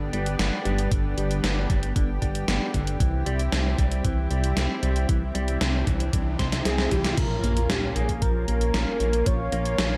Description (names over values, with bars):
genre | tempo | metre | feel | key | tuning
synthwave | 115 BPM | 4/4 | straight | unclear | A4 = 440 Hz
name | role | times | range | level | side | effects
lush unison pad | sustained chords | 0.0-10.0 s | Bb3 to G4 | -35 LUFS | equal | chorus, sidechain pumping
clean electric guitar | arpeggios | 0.0-10.0 s | D3 to C5 | -35 LUFS | equal | harmonic tremolo, digital delay
chorused synth bass | bass | 0.0-10.0 s | G1 to C2 | -28 LUFS | equal | none
gated 80s digital drum machine | drums | 0.1-9.9 s | crash cymbal, hi-hat, snare drum | -31 LUFS | equal | gated reverb, gated reverb snare
electronic kick drum | drums | 0.9-9.4 s | none | -28 LUFS | equal | none
riser and sub drop | sound effects | 5.5-9.3 s | none | -38 LUFS | equal | none
unison lead | melody | 6.7-10.0 s | G4 to Db5 | -31 LUFS | equal | vintage 12-bit sampler grit, delay
room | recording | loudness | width
light reverb, digital ambience | none | -25 LUFS | mono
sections
0.0-7.2 A section; 7.2-10.0 B section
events
drum fill 6.4-7.2; impact 7.2-9.3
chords
0.0 G; 3.0 C; 7.2 Bbm